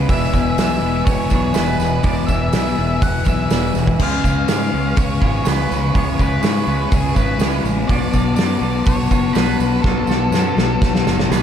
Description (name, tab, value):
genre	rock, shoegaze and dream pop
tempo	123 BPM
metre	4/4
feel	straight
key	unclear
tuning	A4 = 441 Hz
part	dark analog pad	sustained chords	0.0-11.4 s	B4 to C#6	-26 LUFS	equal	lush chorus
part	crunchy overdriven guitar	riff	0.0-11.4 s	E2 to F#4	-25 LUFS	right 10 dB	reverse reverb
part	thick fuzz guitar	riff	0.0-11.4 s	E2 to C#4	-21 LUFS	left 8 dB	distortion, lush chorus
part	growling fingered electric bass	bass	0.0-11.4 s	E1 to G#2	-22 LUFS	right 1 dB	overdrive
part	octave-fuzz lead guitar	melody	0.1-11.4 s	G#4 to F#5	-26 LUFS	left 1 dB	distortion, analog delay
part	loose indie drum kit	drums	0.1-11.4 s	crash cymbal, hi-hat, kick drum, snare drum	-19 LUFS	right 1 dB	none
part	tambourine	percussion	0.1-11.4 s	none	-38 LUFS	right 16 dB	none
room	moderate plate reverb, RT60 2.2 s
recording	dreamy mix soaked in reverb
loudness	-15 LUFS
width	side -9 dB against mid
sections	0.0-11.4 A section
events	drum fill 9.8-11.4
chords	0.1 E7; 4.0 C#7; 7.9 Bm7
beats	| 0.09 0.58 1.07 1.56 | 2.04 2.53 3.02 3.51 | 4.00 4.48 4.97 5.46 | 5.95 6.43 6.92 7.41 | 7.89 8.38 8.87 9.36 | 9.84 10.33 10.82 11.30